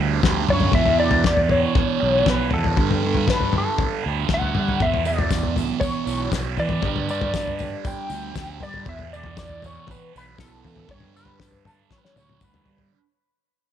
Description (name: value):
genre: psychedelic rock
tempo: 118 BPM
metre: 4/4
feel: straight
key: unclear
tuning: A4 = 441 Hz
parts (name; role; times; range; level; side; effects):
- thick fuzz guitar; riff; 0.0-12.9 s; E2 to G3; -26 LUFS; right 13 dB; distortion, phaser
- fuzz fingered electric bass; bass; 0.0-12.9 s; B1 to G3; -26 LUFS; equal; overdrive
- tanpura; drone; 0.0-3.5 s; none; barely audible; none; none
- cloth-damped thuddy drum kit; drums; 0.2-12.9 s; kick drum, snare drum, toms; -23 LUFS; left 3 dB; none
- lightly driven lead guitar; melody; 0.5-12.8 s; A4 to G5; -25 LUFS; left 2 dB; wah, tape echo
- tambourine; percussion; 5.1-12.7 s; none; -44 LUFS; left 14 dB; none
room: light reverb, small room ambience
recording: 1960s-style stereo with parts hard left and right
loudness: -19 LUFS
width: side -10 dB against mid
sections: 0.0-12.9 A section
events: fade-out 0.0-12.9; drum fill 11.9-12.9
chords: 0.0 G5; 0.7 E5; 2.8 Gsus2; 4.8 E5; 6.8 G5; 8.9 Esus4; 10.9 G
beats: 0.24 | 0.75 1.26 1.76 2.27 | 2.78 3.29 3.79 4.30 | 4.81 5.32 5.82 6.33 | 6.84 7.35 7.85 8.36 | 8.87 9.37 9.88 10.39 | 10.89 11.40 11.91 12.42